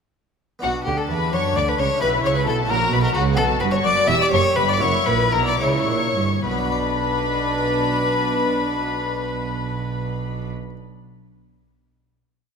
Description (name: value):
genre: classical, baroque-style concerto movement with solo episodes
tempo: 69-88 BPM (dotted quarters)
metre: 6/8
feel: straight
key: B minor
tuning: A4 = 438 Hz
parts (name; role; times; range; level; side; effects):
- rich chamber violin section; melody; 0.6-10.5 s; F#5 to E6; -26 LUFS; left 6 dB; none
- rich violin; melody; 0.6-10.5 s; F#4 to E5; -24 LUFS; left 2 dB; none
- rich chamber violin section; second line; 0.6-10.5 s; F#4 to E5; -27 LUFS; left 5 dB; none
- harpsichord; accompaniment; 0.6-10.8 s; E2 to D5; -30 LUFS; equal; none
- warm chamber viola section; accompaniment; 0.6-10.5 s; D4 to G4; -28 LUFS; right 1 dB; none
- dark studio double bass section; bass; 0.6-10.5 s; E1 to F#2; -28 LUFS; right 5 dB; none
- warm chamber cello section; bass; 0.6-10.5 s; E2 to F#3; -26 LUFS; right 4 dB; none
room: moderate concert hall reverb, RT60 1.8 s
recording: none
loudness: -18 LUFS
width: side -6 dB against mid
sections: 0.6-6.5 ritornello; 6.5-9.9 final chord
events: slowing down 2.7-6.5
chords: 0.6 Bm; 2.0 C#m7b5/B; 2.7 F#/A#; 3.4 B5; 4.1 Em; 4.8 F#7; 6.5 Bm